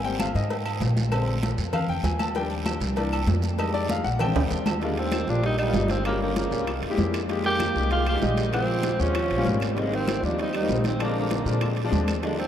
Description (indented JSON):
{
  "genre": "Afro-Cuban jazz",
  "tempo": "194 BPM",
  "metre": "4/4",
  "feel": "straight",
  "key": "Eb major",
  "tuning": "A4 = 440 Hz",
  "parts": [
    { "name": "clear concert grand piano", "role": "accompaniment", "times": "0.0-12.5 s", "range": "Db3 to A5", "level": "-29 LUFS", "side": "left 4 dB", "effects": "none" },
    { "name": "upright bass", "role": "bass", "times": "0.0-12.5 s", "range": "G1 to Bb2", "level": "-27 LUFS", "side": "equal", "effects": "none" },
    { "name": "agogo bells and timbales", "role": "percussion", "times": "0.0-12.5 s", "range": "none", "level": "-34 LUFS", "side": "right 7 dB", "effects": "none" },
    { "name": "congas", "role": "percussion", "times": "0.0-12.5 s", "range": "none", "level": "-32 LUFS", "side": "left 1 dB", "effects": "none" },
    { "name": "claves", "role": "percussion", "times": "0.2-12.2 s", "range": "none", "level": "-43 LUFS", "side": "left 5 dB", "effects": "none" },
    { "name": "cowbell and bongos", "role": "percussion", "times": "0.2-12.5 s", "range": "none", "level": "-36 LUFS", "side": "left 6 dB", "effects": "none" },
    { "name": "guiro", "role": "percussion", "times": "0.2-12.5 s", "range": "none", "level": "-40 LUFS", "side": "right 7 dB", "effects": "none" },
    { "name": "clear tenor saxophone", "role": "melody", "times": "4.8-12.5 s", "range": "G3 to G4", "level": "-28 LUFS", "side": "equal", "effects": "none" },
    { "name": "breathy trombone", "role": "second line", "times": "4.8-12.5 s", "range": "Bb2 to Bb3", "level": "-31 LUFS", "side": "right 5 dB", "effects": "none" }
  ],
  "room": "moderate huge ambient reverb, RT60 8.9 s",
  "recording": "in a vast, echoing space, lossy compression artefacts",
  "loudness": "-22 LUFS",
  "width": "side -10 dB against mid",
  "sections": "0.0-4.8 A section; 4.8-12.5 B section",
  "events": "grand piano solo 0.0-4.8; drum fill 4.4-4.8",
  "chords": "0.0 Abmaj9; 1.1 Bb9; 2.4 Ebmaj9; 3.0 C7; 3.6 Fm7; 4.2 Bb7; 4.8 Ebmaj9; 6.1 Gm7b5; 6.7 C7b13; 7.3 Fm11; 8.5 Bbm7; 9.1 Eb9; 9.8 Abmaj9; 11.0 Bb9"
}